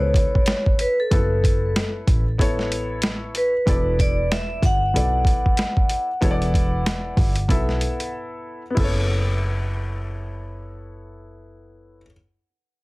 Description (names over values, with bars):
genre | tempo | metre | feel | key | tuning
hip hop, jazz-hop | 94 BPM | 4/4 | swing 59% on 16ths | F# minor | A4 = 440 Hz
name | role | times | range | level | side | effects
vibraphone with medium hard mallets | melody | 0.0-8.1 s | A4 to F#5 | -24 LUFS | equal | tape echo
warm grand piano | accompaniment | 0.0-12.1 s | B3 to E5 | -29 LUFS | left 2 dB | none
clear double bass | bass | 0.0-12.0 s | E1 to C#2 | -24 LUFS | equal | none
boom bap sampler-style drum kit | drums | 0.1-8.9 s | crash cymbal, hi-hat, kick drum, snare drum | -21 LUFS | equal | none
room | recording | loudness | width
light reverb | heavily compressed radio sound, multiband compression | -18 LUFS | side -22 dB against mid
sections
0.0-8.8 A section; 8.8-11.3 B section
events
break 8.1-8.8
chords
0.0 F#m7; 3.7 E7sus2; 8.8 F#m7